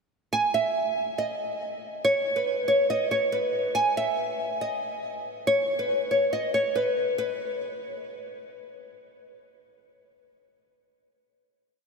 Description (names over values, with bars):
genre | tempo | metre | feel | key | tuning
hip hop | 140 BPM | 4/4 | half-time | unclear | A4 = 440 Hz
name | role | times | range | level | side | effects
nylon-string guitar | solo | 0.3-8.4 s | B4 to G#5 | -24 LUFS | equal | analog chorus, diffuse ambient delay
room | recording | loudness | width
wet huge ambient reverb, RT60 5.0 s | dreamy mix soaked in reverb | -24 LUFS | side -4 dB against mid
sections
0.3-7.2 hook; 7.2-10.6 final note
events
none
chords
none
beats
| 0.33 0.75 1.18 1.61 | 2.04 2.47 2.90 3.33 | 3.75 4.18 4.61 5.04 | 5.47 5.90 6.33 6.75 | 7.18 7.61 8.04